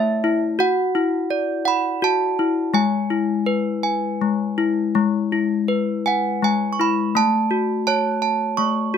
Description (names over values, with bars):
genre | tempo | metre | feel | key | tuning
children's music | 83 BPM | 3/4 | rubato | unclear | A4 = 440 Hz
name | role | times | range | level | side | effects
desk bells | solo | 0.0-9.0 s | G#3 to C#6 | -18 LUFS | left 1 dB | none
room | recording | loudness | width
moderate small room ambience, RT60 0.5 s | close, detailed microphones | -18 LUFS | side -7 dB against mid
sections
0.0-9.0 A section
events
none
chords
0.0 A; 0.6 Dadd9; 2.7 E; 7.2 F#m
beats
| 0.59 1.31 2.02 | 2.75 3.47 4.21 | 4.95 5.69 6.42 | 7.16 7.87 8.58